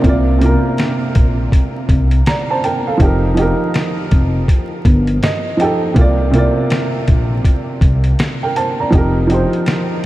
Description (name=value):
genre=lo-fi hip hop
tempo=81 BPM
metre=4/4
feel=swing 63% on 16ths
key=unclear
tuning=A4 = 439 Hz
part: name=dark upright piano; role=accompaniment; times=0.0-10.1 s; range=C3 to Bb5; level=-16 LUFS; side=right 2 dB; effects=low-pass filter
part: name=upright bass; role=bass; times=0.0-9.4 s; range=F1 to C2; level=-15 LUFS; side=equal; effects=none
part: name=dusty soul sampler-style drum kit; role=drums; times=0.0-9.9 s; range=hi-hat, kick drum, snare drum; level=-16 LUFS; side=equal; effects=none
room=light reverb, small room ambience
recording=vinyl crackle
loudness=-12 LUFS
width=side -16 dB against mid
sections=0.0-10.1 A section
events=upright piano fill 4.9-6.0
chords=0.0 C9sus4; 3.0 F9sus4; 6.0 C9sus4; 8.9 F9sus4